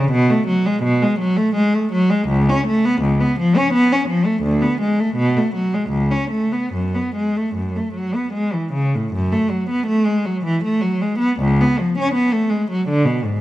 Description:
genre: classical, baroque-style suite movement for unaccompanied cello.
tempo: 69-85 BPM.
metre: 3/4.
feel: rubato.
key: F# minor.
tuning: A4 = 440 Hz.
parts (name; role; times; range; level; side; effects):
rich cello; solo; 0.0-13.4 s; C#2 to C#4; -16 LUFS; equal; none.
room: moderate recital hall reverb, RT60 1.5 s.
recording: close, detailed microphones.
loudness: -16 LUFS.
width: side -15 dB against mid.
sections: 0.0-9.1 A section; 9.1-13.4 B section.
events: none.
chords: none.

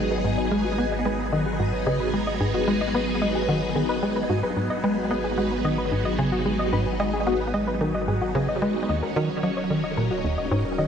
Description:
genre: ambient, sequencer-driven space music.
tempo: 111 BPM.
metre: 4/4.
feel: straight.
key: G# minor.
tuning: A4 = 440 Hz.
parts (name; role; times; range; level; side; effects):
phased string machine; sustained chords; 0.0-10.9 s; F#3 to D#5; -26 LUFS; equal; ensemble chorus, phaser, shimmer reverb.
soft round pluck; arpeggios; 0.0-10.9 s; F#4 to D#5; -30 LUFS; left 2 dB; chorus, auto-pan, cassette tape, tape echo, shimmer reverb.
tight sequencer bass; riff; 0.0-10.9 s; D#2 to B3; -25 LUFS; equal; analog chorus, tape echo.
warm sub bass; bass; 0.0-10.9 s; D#1 to G#1; -34 LUFS; equal; none.
room: moderate plate reverb, RT60 3.0 s.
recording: none.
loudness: -22 LUFS.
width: side -7 dB against mid.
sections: 0.0-10.9 A section.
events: none.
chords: 0.0 G#m7; 8.9 D#m7.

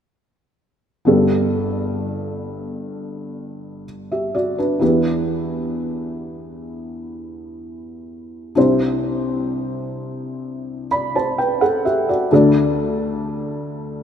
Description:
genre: pop.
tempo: 64 BPM.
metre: 4/4.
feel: straight.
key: G major.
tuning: A4 = 439 Hz.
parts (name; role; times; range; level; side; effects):
felt-muted upright piano; accompaniment; 1.1-14.0 s; G1 to B5; -19 LUFS; equal; none.
room: wet lush hall reverb, RT60 3.0 s.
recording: rough home demo mix.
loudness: -17 LUFS.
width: side -8 dB against mid.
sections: 1.1-14.0 A section.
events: none.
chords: 1.1 Gadd9; 4.8 Em; 8.6 Cadd9; 12.3 D.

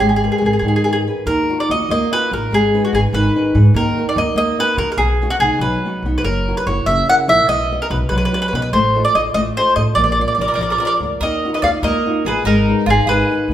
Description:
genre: italian folk, Italian serenade.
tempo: 97 BPM (dotted quarters).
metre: 6/8.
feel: rubato.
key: Eb harmonic minor.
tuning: A4 = 439 Hz.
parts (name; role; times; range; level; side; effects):
mandolin; melody; 0.0-13.5 s; Gb4 to Gb5; -17 LUFS; equal; none.
flamenco guitar; accompaniment; 0.0-13.5 s; B2 to D#5; -20 LUFS; left 1 dB; none.
upright bass; bass; 0.0-13.5 s; Gb1 to Eb3; -19 LUFS; equal; none.
mandolin; second line; 10.4-13.5 s; Eb4 to D5; -23 LUFS; right 2 dB; none.
room: wet large studio reverb, RT60 1.2 s.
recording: band playing live in one room.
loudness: -14 LUFS.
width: side -11 dB against mid.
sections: 0.0-1.3 A section; 1.3-13.5 B section.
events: none.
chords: 0.0 G#madd9; 1.3 Ebmadd9; 2.5 Abm; 3.8 Ebm; 5.0 B; 6.2 Gb7; 7.5 B; 8.7 F7/A; 10.0 Bb; 11.2 Ebmadd9; 12.5 Abm.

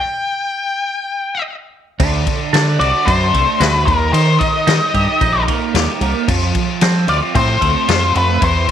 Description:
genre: psychedelic rock.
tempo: 112 BPM.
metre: 4/4.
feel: straight.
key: unclear.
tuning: A4 = 444 Hz.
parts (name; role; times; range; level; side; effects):
octave-fuzz lead guitar; melody; 0.0-8.7 s; Bb4 to G5; -16 LUFS; left 3 dB; distortion, slapback echo.
twelve-string electric guitar; riff; 2.0-8.7 s; D3 to G4; -20 LUFS; right 14 dB; phaser.
growling fingered electric bass; bass; 2.0-8.7 s; Bb1 to F3; -16 LUFS; equal; overdrive.
vintage drum kit; drums; 2.0-8.7 s; crash cymbal, kick drum, snare drum; -19 LUFS; left 4 dB; none.
room: light reverb, studio reverb.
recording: 1960s-style stereo.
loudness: -13 LUFS.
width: side -9 dB against mid.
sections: 0.0-2.0 A section; 2.0-8.7 B section.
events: stop 0.0-2.0.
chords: 0.0 N.C.; 2.0 D; 3.9 Eb; 6.3 F.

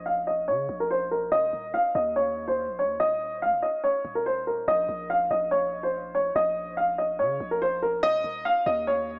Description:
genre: hip hop.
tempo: 143 BPM.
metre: 4/4.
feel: half-time.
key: Bb minor.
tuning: A4 = 440 Hz.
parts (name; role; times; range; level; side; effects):
dark grand piano; melody; 0.0-9.2 s; Bb4 to F5; -26 LUFS; equal; low-pass filter.
long sustained 808-style bass; bass; 0.0-9.2 s; Eb1 to Db3; -43 LUFS; equal; none.
room: light reverb, small room ambience.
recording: small speaker sound.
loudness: -26 LUFS.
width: mono.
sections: 0.0-9.2 A section.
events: filter sweep on grand piano 0.0-8.0.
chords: 0.0 Bbm; 1.3 Eb5; 4.7 Bbm; 8.0 Eb5.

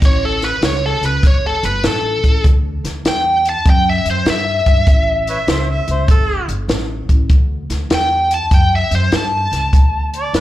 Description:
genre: electric blues shuffle.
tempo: 99 BPM.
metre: 4/4.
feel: swing 66% on 8ths.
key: A mixolydian.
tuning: A4 = 437 Hz.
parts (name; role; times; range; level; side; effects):
upright bass; bass; 0.0-10.4 s; G1 to G2; -20 LUFS; equal; none.
compact cocktail drum kit; drums; 0.0-10.4 s; hi-hat, kick drum, snare drum; -15 LUFS; equal; none.
biting lead guitar; melody; 0.1-10.4 s; A4 to A5; -17 LUFS; equal; overdrive, slapback echo.
mellow harmonica; second line; 5.3-6.5, 10.2-10.4 s; A4 to E5; -22 LUFS; right 2 dB; overdrive, slapback echo.
room: little or no reverb.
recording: live gig heard through the venue's PA, club reverb.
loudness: -13 LUFS.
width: side -14 dB against mid.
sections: 0.0-10.4 A section.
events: none.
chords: 0.0 A7; 9.7 D5.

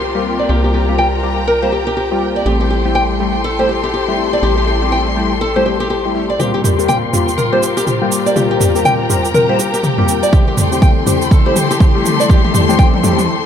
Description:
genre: afro house.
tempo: 122 BPM.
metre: 4/4.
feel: swing 60% on 16ths.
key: unclear.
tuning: A4 = 441 Hz.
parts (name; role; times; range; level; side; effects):
warm studio string section; sustained chords; 0.0-13.5 s; E4 to C6; -20 LUFS; left 2 dB; sidechain pumping, low-pass filter.
nylon-string guitar; arpeggios; 0.0-12.9 s; G4 to G5; -18 LUFS; equal; sidechain pumping, low-pass filter, dub echo.
woody FM bass; bass; 0.0-13.2 s; A1 to F2; -22 LUFS; right 1 dB; tube saturation, sidechain pumping, high-pass filter.
downlifter; sound effects; 0.0-2.5 s; none; -36 LUFS; equal; none.
warm analog keys; stabs; 0.1-13.2 s; G3 to C5; -18 LUFS; left 4 dB; chorus, phaser, sidechain pumping, low-pass filter, dub echo.
electronic toms and cabasa; drums; 6.4-13.3 s; none; -17 LUFS; right 1 dB; overdrive.
electronic kick drum; drums; 10.3-12.9 s; none; -10 LUFS; right 1 dB; overdrive.
room: moderate spring reverb, RT60 2.4 s.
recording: echo-heavy mix.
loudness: -12 LUFS.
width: side -8 dB against mid.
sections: 0.0-6.4 A section; 6.4-13.5 B section.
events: build-up 6.4-13.5; drum fill 6.4-13.3; break 13.3.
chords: 0.0 C7sus4; 2.5 Am7; 6.4 C7sus4; 10.3 Am7.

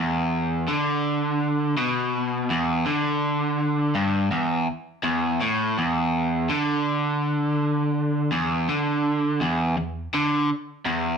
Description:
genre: rock.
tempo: 82 BPM.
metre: 4/4.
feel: straight.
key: unclear.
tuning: A4 = 440 Hz.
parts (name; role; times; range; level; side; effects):
overdriven electric guitar; solo; 0.0-11.2 s; E2 to D3; -22 LUFS; equal; none.
room: moderate large studio reverb, RT60 0.9 s.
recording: band playing live in one room.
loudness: -22 LUFS.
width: side -6 dB against mid.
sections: 0.0-11.2 A section.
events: none.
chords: none.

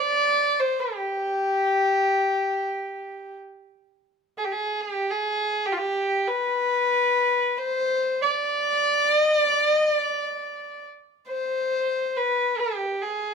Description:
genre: Arabic maqam ensemble.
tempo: free time.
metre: none.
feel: none.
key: G maqam hijaz.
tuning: A4 = 440 Hz.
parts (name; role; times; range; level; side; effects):
warm violin; solo; 0.0-13.3 s; F4 to D5; -22 LUFS; equal; none.
room: light reverb.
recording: close, detailed microphones.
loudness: -21 LUFS.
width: side -6 dB against mid.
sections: 0.0-4.0 A section; 4.0-13.3 A section.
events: none.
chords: none.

